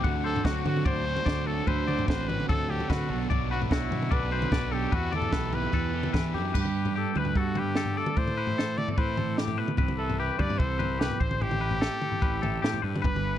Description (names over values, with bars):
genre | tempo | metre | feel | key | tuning
math rock and midwest emo | 148 BPM | 4/4 | straight | unclear | A4 = 439 Hz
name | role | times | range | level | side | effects
twelve-string electric guitar | accompaniment | 0.0-13.4 s | E2 to A4 | -35 LUFS | right 13 dB | spring reverb
twangy electric guitar | arpeggios | 0.0-13.4 s | F#4 to F#5 | -34 LUFS | left 9 dB | spring reverb
overdriven electric guitar | riff | 0.0-6.5 s | B2 to G4 | -35 LUFS | right 2 dB | none
fuzz fingered electric bass | bass | 0.0-13.4 s | G1 to E3 | -32 LUFS | equal | overdrive
compact cocktail drum kit | drums | 0.0-13.2 s | crash cymbal, kick drum, snare drum, toms | -29 LUFS | equal | none
bright trumpet | melody | 0.3-13.4 s | E4 to D5 | -32 LUFS | left 2 dB | none
room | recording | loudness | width
little or no reverb | dry, close 1970s-style studio recording | -25 LUFS | side -11 dB against mid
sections
0.0-6.5 A section; 6.5-13.4 B section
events
none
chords
0.0 D7; 3.1 Bm7; 4.9 Em11; 6.5 Gadd9; 8.2 Am7; 9.8 Cmaj7; 11.2 Am7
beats
| 0.04 0.45 0.86 1.26 | 1.67 2.08 2.49 2.89 | 3.30 3.71 4.11 4.52 | 4.92 5.33 5.74 6.14 | 6.55 6.95 7.36 7.77 | 8.17 8.58 8.98 9.39 | 9.79 10.20 10.61 11.01 | 11.41 11.82 12.23 12.63 | 13.04